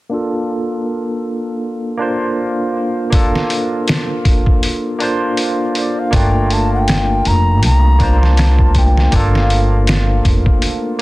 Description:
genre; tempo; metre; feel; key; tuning
trip hop; 80 BPM; 4/4; swing 57% on 16ths; unclear; A4 = 443 Hz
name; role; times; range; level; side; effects
barky tine electric piano; accompaniment; 0.1-11.0 s; A3 to C5; -18 LUFS; equal; medium stereo tremolo, harmonic tremolo, low-pass filter, tape echo
trip hop sampler-style drum kit; drums; 3.1-11.0 s; hi-hat, kick drum, snare drum; -16 LUFS; equal; small room ambience
mellow baroque flute; melody; 5.8-10.3 s; D5 to Bb5; -20 LUFS; equal; tape echo
upright bass; bass; 6.1-10.4 s; F1 to C2; -13 LUFS; equal; tube saturation
room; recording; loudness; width
light reverb, small room ambience; dense, heavily limited modern master; -12 LUFS; side -19 dB against mid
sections
0.1-6.1 A section; 6.1-11.0 B section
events
filter sweep on tine electric piano 0.1-6.1; break 4.6-6.1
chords
0.1 Bbmaj9; 6.1 Gm7

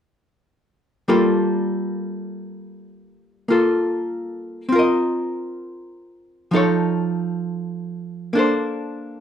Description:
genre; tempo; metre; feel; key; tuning
jazz; 66 BPM; 4/4; swing 66% on 8ths; unclear; A4 = 440 Hz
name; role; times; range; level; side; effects
archtop guitar, miked and amplified; accompaniment; 1.1-9.2 s; F3 to Eb5; -20 LUFS; equal; none
room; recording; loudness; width
light reverb; close, detailed microphones; -19 LUFS; side -8 dB against mid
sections
1.1-9.2 A section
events
none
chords
1.1 Gm9; 4.7 Cm7; 6.5 Faug7; 8.4 Bbmaj9

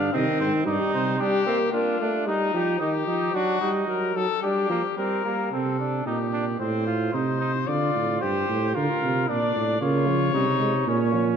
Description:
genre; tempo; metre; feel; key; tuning
classical, imitative canzona for brass ensemble; 112 BPM; 4/4; straight; C minor; A4 = 440 Hz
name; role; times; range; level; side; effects
clear trumpet; melody; 0.0-11.3 s; Eb4 to F5; -27 LUFS; left 8 dB; none
clear trumpet; second line; 0.0-11.4 s; Bb3 to G4; -29 LUFS; right 4 dB; none
warm euphonium; accompaniment; 0.0-5.5, 9.8-11.4 s; D3 to Bb3; -26 LUFS; right 1 dB; none
warm tuba; bass; 0.0-1.2, 5.5-11.4 s; G2 to D3; -25 LUFS; right 2 dB; none
room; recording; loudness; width
wet concert hall reverb, RT60 2.2 s; dark, warm production; -22 LUFS; side -7 dB against mid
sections
0.0-5.5 A section; 5.5-11.4 B section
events
none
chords
0.1 Cm; 1.2 Gm; 2.3 Eb; 3.3 D/F#; 4.4 Gm; 5.5 C5; 6.6 Adim; 7.7 Dm; 8.8 Bb; 9.8 Bbm

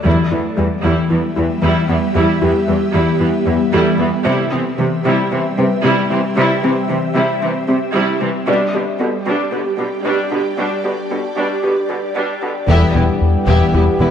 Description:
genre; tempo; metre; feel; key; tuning
cinematic, hybrid orchestral and electronic film score; 114 BPM; 4/4; straight; E minor; A4 = 440 Hz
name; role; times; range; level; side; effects
rich symphonic viola section; accompaniment; 0.0-14.1 s; C3 to E4; -20 LUFS; right 1 dB; none
felt-muted upright piano; texture; 0.0-14.1 s; G3 to D5; -25 LUFS; left 1 dB; digital delay
ethereal airy pad; sustained chords; 0.1-14.1 s; G3 to E5; -21 LUFS; equal; ensemble chorus, built-in reverb, phaser
mallet-like synth pluck; arpeggios; 0.1-14.1 s; C3 to G4; -22 LUFS; left 4 dB; chorus, digital delay
clear symphonic cello section; bass; 0.1-14.1 s; E2 to C3; -21 LUFS; right 2 dB; none
clear symphonic violin section; second line; 12.7-14.1 s; B3 to E5; -22 LUFS; left 5 dB; none
bright trombone section; sustained chords; 12.7-14.1 s; E3 to G3; -23 LUFS; right 2 dB; none
warm French horn section; sustained chords; 12.7-14.1 s; B3 to G4; -22 LUFS; left 5 dB; none
rubbery square bass; riff; 12.7-14.1 s; E2 to E3; -15 LUFS; left 1 dB; none
clear symphonic double bass section; bass; 12.7-14.1 s; E1; -20 LUFS; right 3 dB; none
room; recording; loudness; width
moderate scoring stage reverb, RT60 1.8 s; dark, warm production, high-pass filter; -14 LUFS; side -8 dB against mid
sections
0.0-12.7 A section; 12.7-14.1 B section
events
build-up 0.0-12.7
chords
0.1 Em; 4.3 C; 8.5 G/B; 12.7 Em

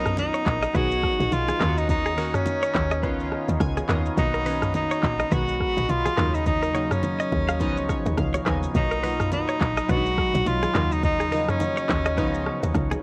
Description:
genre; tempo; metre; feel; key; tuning
afrobeats; 105 BPM; 4/4; swing 58% on 16ths; Db mixolydian; A4 = 440 Hz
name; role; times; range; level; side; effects
breathy tenor saxophone; melody; 0.0-12.6 s; Db4 to Gb4; -29 LUFS; equal; cassette tape, analog delay
warm analog keys; accompaniment; 0.0-13.0 s; Cb3 to Ab5; -33 LUFS; equal; chorus, cassette tape
deep dark ambient pad; sustained chords; 0.0-13.0 s; Gb3 to Db6; -36 LUFS; equal; chorus, built-in reverb, cassette tape
deep log drum bass; bass; 0.0-12.9 s; Bb1 to Eb2; -30 LUFS; equal; none
afro-pop drum kit; drums; 0.1-13.0 s; handclaps, hi-hat, kick drum, rim click, shaker, toms; -31 LUFS; equal; cassette tape
bongos and congas; percussion; 0.2-13.0 s; none; -36 LUFS; equal; none
direct-recorded clean electric guitar; riff; 0.3-13.0 s; Ab4 to F5; -33 LUFS; equal; cassette tape, analog delay
room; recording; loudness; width
little or no reverb; home recording on cassette; -24 LUFS; mono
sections
0.0-13.0 A section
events
synth keys fill 3.3-4.2, 7.6-8.7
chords
0.0 Cbmaj7; 0.7 Abm7/Cb; 1.6 Ebm7; 3.0 Db9; 4.2 Cbmaj7; 5.3 Abm7/Cb; 6.2 Ebm7; 7.6 Db9; 8.7 Cbmaj7; 9.9 Abm7/Cb; 10.7 Ebm7; 12.2 Db9

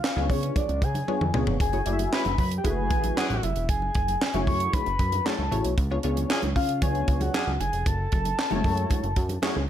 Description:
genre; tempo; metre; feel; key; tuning
early-eighties boogie funk; 115 BPM; 4/4; straight; F# minor; A4 = 440 Hz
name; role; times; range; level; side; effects
soft octave-layered synth lead; melody; 0.0-9.7 s; C#5 to C#6; -30 LUFS; left 2 dB; chorus, phaser
tight funk drum kit; drums; 0.0-9.6 s; handclaps, hi-hat, kick drum, snare drum, toms; -27 LUFS; right 1 dB; gated reverb
congas; percussion; 0.0-9.7 s; none; -36 LUFS; right 2 dB; none
funky polysynth comp; accompaniment; 0.2-9.6 s; G#3 to E5; -30 LUFS; left 2 dB; chorus
fat analog bass; bass; 0.2-9.7 s; E1 to C#3; -28 LUFS; equal; none
warm horn section; second line; 2.1-7.5 s; E3 to G#4; -33 LUFS; equal; none
room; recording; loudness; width
little or no reverb; none; -23 LUFS; side -10 dB against mid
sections
0.0-9.7 A section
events
drum fill 1.1-1.6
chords
0.0 C#7b9; 1.6 F#m9; 5.8 C#7b9; 7.9 F#m9

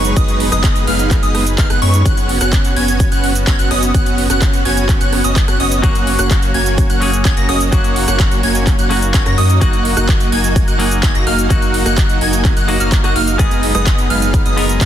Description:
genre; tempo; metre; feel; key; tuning
EDM, festival progressive house; 127 BPM; 4/4; straight; F# major; A4 = 440 Hz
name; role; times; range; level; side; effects
supersaw pad; sustained chords; 0.0-14.9 s; F#3 to B4; -23 LUFS; right 2 dB; sidechain pumping
plucky unison lead; arpeggios; 0.0-14.9 s; C#6 to A#6; -21 LUFS; equal; analog chorus, sidechain pumping, digital delay
dense compressed supersaw; riff; 0.0-14.9 s; G#3 to A#5; -20 LUFS; right 1 dB; sidechain pumping, digital delay
saturated sub bass; bass; 0.0-14.9 s; F#1 to F#2; -19 LUFS; equal; tube saturation, sidechain pumping
big-room dance drum kit; drums; 0.0-14.9 s; cabasa, handclaps, hi-hat, rim click; -22 LUFS; right 1 dB; overdrive
electronic kick drum; drums; 0.2-14.9 s; none; -14 LUFS; equal; overdrive
clean electric guitar; accompaniment; 5.8-14.9 s; F#3 to A#4; -22 LUFS; left 4 dB; sidechain pumping, digital delay
room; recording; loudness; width
digital ambience; dense, heavily limited modern master; -11 LUFS; side -10 dB against mid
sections
0.0-14.9 A section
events
none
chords
0.0 G#m/F#; 2.1 Bsus2/F#; 5.8 F#; 9.6 D#m/F#; 13.4 G#m/F#

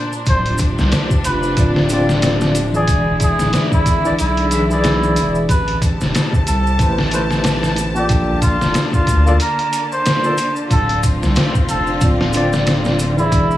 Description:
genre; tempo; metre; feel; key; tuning
trip hop; 92 BPM; 4/4; swing 57% on 16ths; unclear; A4 = 440 Hz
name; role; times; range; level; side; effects
trumpet with cup mute; melody; 0.0-13.6 s; E4 to C5; -21 LUFS; right 1 dB; tape echo
rich symphonic string section; sustained chords; 0.0-13.6 s; Bb2 to A5; -23 LUFS; left 1 dB; none
maracas; percussion; 0.1-13.6 s; none; -32 LUFS; right 1 dB; none
soft dub sub bass; bass; 0.3-13.6 s; D1 to D2; -20 LUFS; equal; none
trip hop sampler-style drum kit; drums; 0.3-13.5 s; hi-hat, kick drum, snare drum; -18 LUFS; equal; none
overdriven tine electric piano; accompaniment; 1.6-13.6 s; D3 to E5; -20 LUFS; equal; medium tremolo, tape echo
room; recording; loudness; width
small room ambience; vinyl crackle; -14 LUFS; side -13 dB against mid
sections
0.0-13.6 A section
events
none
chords
0.3 Dm7; 2.9 E7; 5.5 Amadd9; 8.1 Bbmaj7; 10.7 Dm7

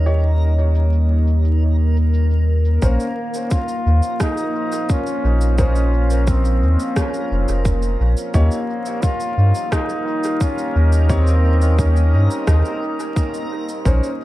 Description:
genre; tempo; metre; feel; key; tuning
ambient dub; 87 BPM; 4/4; straight; unclear; A4 = 443 Hz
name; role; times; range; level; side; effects
deep dark ambient pad; sustained chords; 0.0-14.2 s; Bb3 to F5; -27 LUFS; equal; chorus, built-in reverb
soft dub sub bass; bass; 0.0-14.0 s; F1 to G2; -14 LUFS; equal; none
backwards swelling texture; texture; 0.0-14.2 s; Bb3 to Bb4; -32 LUFS; right 2 dB; built-in reverb
clear upright piano; stabs; 0.1-14.1 s; Db4 to Db5; -30 LUFS; left 1 dB; vintage 12-bit sampler grit, low-pass filter, dub echo
electronic cabasa and rim click; drums; 0.1-14.2 s; none; -31 LUFS; right 1 dB; overdrive, low-pass filter on perc, low-pass filter on snare, low-pass filter on room, dub echo
warm trombone; melody; 2.8-13.5 s; Bb3 to F4; -24 LUFS; equal; dub echo
electronic kick drum; drums; 2.8-14.0 s; none; -20 LUFS; equal; overdrive
room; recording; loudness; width
digital ambience; dark, warm production, vinyl crackle; -15 LUFS; side -16 dB against mid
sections
0.0-2.8 A section; 2.8-14.2 B section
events
filter sweep on ambient pad 0.0-2.8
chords
0.0 Eb7; 2.8 Bbmadd9; 8.3 Eb7

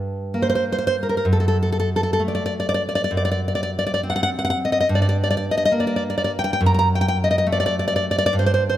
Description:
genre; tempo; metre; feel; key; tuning
romantic piece for solo classical guitar; 60-70 BPM (dotted quarters); 6/8; rubato; unclear; A4 = 440 Hz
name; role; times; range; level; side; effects
nylon-string guitar; solo; 0.0-8.8 s; F#2 to Bb5; -18 LUFS; equal; none
room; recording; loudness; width
moderate concert hall reverb, RT60 2.0 s; none; -18 LUFS; side -12 dB against mid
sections
0.0-8.8 A section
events
none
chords
0.0 Gm; 1.3 F#m; 3.1 D7/F#; 4.9 Gm; 6.6 F#m

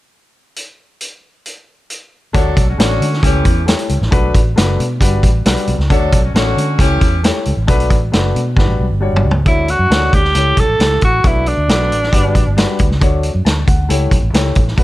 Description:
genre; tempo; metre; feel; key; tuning
uptempo 1960s-style soul; 135 BPM; 4/4; straight; D major; A4 = 441 Hz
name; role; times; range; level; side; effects
vintage drum kit; drums; 0.6-14.8 s; hi-hat, kick drum, snare drum, toms; -15 LUFS; equal; none
warm horn section; second line; 2.3-7.2 s; D3 to A4; -22 LUFS; equal; none
warm concert grand piano; accompaniment; 2.3-14.8 s; G3 to A5; -20 LUFS; left 3 dB; none
vintage muted fingered electric bass; bass; 2.3-14.8 s; F#1 to D3; -16 LUFS; equal; none
breathy tenor saxophone; melody; 9.5-12.8 s; D4 to A4; -15 LUFS; right 1 dB; none
room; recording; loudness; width
little or no reverb; dark, warm production; -11 LUFS; side -16 dB against mid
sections
0.6-2.3 A section; 2.3-9.5 B section; 9.5-14.8 C section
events
drum fill 8.6-9.5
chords
0.6 N.C.; 2.3 Dmaj7; 3.2 A7/C#; 4.1 Bm7; 5.0 Gmaj7; 5.9 Dmaj7; 6.8 A7/C#; 7.7 Bm7; 8.6 Gmaj7; 9.5 Dmaj7; 10.4 A7; 11.2 Bm7; 12.1 Gmaj7; 13.0 Dmaj7; 13.9 A7

